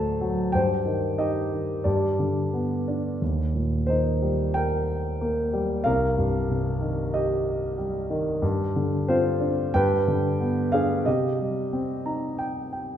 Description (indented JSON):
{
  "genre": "classical, lyrical solo piano",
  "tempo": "91 BPM",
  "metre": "4/4",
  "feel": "rubato",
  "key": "C minor",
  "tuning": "A4 = 438 Hz",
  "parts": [
    { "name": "dark concert grand piano", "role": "solo", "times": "0.0-13.0 s", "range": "C2 to Bb5", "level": "-23 LUFS", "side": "equal", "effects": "none" }
  ],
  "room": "wet scoring stage reverb, RT60 1.6 s",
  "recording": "recorded in a church or concert hall",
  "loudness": "-23 LUFS",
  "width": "side -10 dB against mid",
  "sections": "0.0-13.0 A section",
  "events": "grand piano fill 11.7-13.0",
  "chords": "0.0 D7; 0.5 Cm/G; 1.9 G; 3.2 Eb; 5.9 Cm7; 8.4 G7sus4; 9.7 G; 11.1 Cm"
}